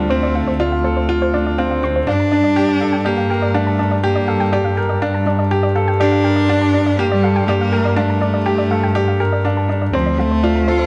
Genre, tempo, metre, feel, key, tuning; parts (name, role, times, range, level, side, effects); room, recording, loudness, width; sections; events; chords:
piano and strings electronica; 122 BPM; 4/4; straight; A4 = 441 Hz
rich cello; melody; 0.0-10.9 s; F3 to F4; -22 LUFS; equal
soft round pluck; arpeggios; 0.0-10.9 s; C5 to C6; -27 LUFS; equal; chorus, tape echo
clear upright piano; riff; 0.0-10.9 s; C4 to Bb4; -21 LUFS; equal
rich studio double bass section; bass; 0.0-10.9 s; D2 to G2; -21 LUFS; equal
light reverb, small room ambience; nothing above 10.9 kHz; -17 LUFS; mono
0.0-10.9 A section
0.0 Dm7; 2.1 Gm9; 9.9 Dm7